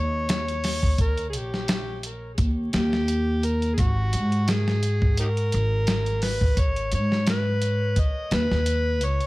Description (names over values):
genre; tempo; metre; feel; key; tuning
trip hop; 86 BPM; 4/4; swing 55% on 16ths; G# minor; A4 = 439 Hz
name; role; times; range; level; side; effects
overdriven harmonica; melody; 0.0-9.3 s; D#4 to D#5; -28 LUFS; left 1 dB; tape echo
upright bass; bass; 0.0-9.2 s; G#1 to G#2; -24 LUFS; equal; none
dusty soul sampler-style drum kit; drums; 0.3-9.3 s; hi-hat, kick drum, snare drum; -25 LUFS; equal; none
room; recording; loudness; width
digital ambience; vinyl crackle; -21 LUFS; side -20 dB against mid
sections
0.0-9.3 A section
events
none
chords
0.0 D#7; 3.8 G#m